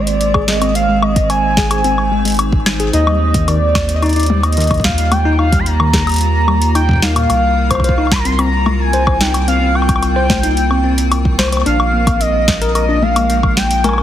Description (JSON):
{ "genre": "IDM", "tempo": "110 BPM", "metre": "4/4", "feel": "straight", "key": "Ab major", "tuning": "A4 = 440 Hz", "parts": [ { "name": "warm velvety synth lead", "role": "melody", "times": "0.0-14.0 s", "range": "D5 to C6", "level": "-18 LUFS", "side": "right 1 dB", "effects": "chorus, ping-pong delay" }, { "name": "icy glass pad", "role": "sustained chords", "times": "0.0-14.0 s", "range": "Eb3 to C5", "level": "-22 LUFS", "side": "equal", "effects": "chorus, built-in reverb" }, { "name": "round analog bass", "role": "bass", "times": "0.0-14.0 s", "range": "Ab1 to Eb2", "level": "-16 LUFS", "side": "equal", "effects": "none" }, { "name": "booming analog drum machine", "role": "drums", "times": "0.1-14.0 s", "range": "hi-hat, snare drum, toms, woodblock", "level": "-19 LUFS", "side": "left 2 dB", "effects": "none" }, { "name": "bell-like tine electric piano", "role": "arpeggios", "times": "0.3-14.0 s", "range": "Bb2 to C5", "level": "-21 LUFS", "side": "left 3 dB", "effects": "vintage 12-bit sampler grit, ping-pong delay" }, { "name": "electronic kick drum", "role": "drums", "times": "0.3-13.5 s", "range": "none", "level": "-18 LUFS", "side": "equal", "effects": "none" } ], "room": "light reverb, digital ambience", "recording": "heavily compressed radio sound, multiband compression", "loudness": "-11 LUFS", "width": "side -11 dB against mid", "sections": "0.0-14.0 A section", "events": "none", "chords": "0.0 Ab; 2.9 Ebadd9; 7.3 C7sus4; 11.7 Bb7sus4" }